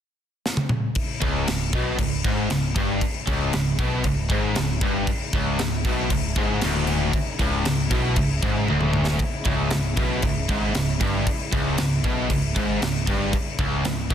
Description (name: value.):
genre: heavy metal.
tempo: 116 BPM.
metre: 4/4.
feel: straight.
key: C# minor.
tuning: A4 = 441 Hz.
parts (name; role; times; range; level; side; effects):
tight metal drum kit; drums; 0.5-14.1 s; crash cymbal, kick drum, snare drum, toms; -25 LUFS; equal; none.
rich chamber string section; sustained chords; 0.9-14.1 s; C#3 to E4; -35 LUFS; left 2 dB; none.
overdriven electric guitar; riff; 1.2-14.1 s; C#2 to B2; -28 LUFS; left 1 dB; none.
scooped high-gain guitar; riff; 1.2-14.1 s; C#2 to B2; -28 LUFS; right 9 dB; distortion.
tight distorted guitar; riff; 1.2-14.1 s; C#2 to B2; -28 LUFS; left 8 dB; distortion.
picked electric bass; bass; 1.2-14.1 s; C#1 to B1; -28 LUFS; equal; none.
room: little or no reverb.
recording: dense, heavily limited modern master.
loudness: -21 LUFS.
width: side -9 dB against mid.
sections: 1.0-14.1 A section.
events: drum fill 0.5-1.0, 8.7-9.2.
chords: 0.0 N.C.; 1.0 C#m.